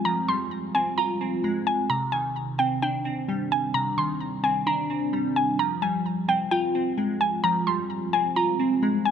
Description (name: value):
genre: hip hop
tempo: 130 BPM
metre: 4/4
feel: half-time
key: unclear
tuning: A4 = 440 Hz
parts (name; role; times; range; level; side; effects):
- glassy digital keys; accompaniment; 0.0-9.1 s; C3 to F4; -26 LUFS; right 1 dB; chorus, low-pass filter
- mallet-like synth pluck; melody; 0.1-9.1 s; G5 to C6; -25 LUFS; equal; chorus, low-pass filter, tape echo
room: light reverb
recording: none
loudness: -23 LUFS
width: side -8 dB against mid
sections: 0.0-9.1 A section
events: none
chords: 0.0 Fmadd9; 1.9 Cmadd9; 5.6 Fmadd9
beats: | 0.05 0.52 0.98 1.44 | 1.90 2.36 2.82 3.29 | 3.75 4.21 4.67 5.13 | 5.59 6.05 6.51 6.98 | 7.44 7.90 8.36 8.82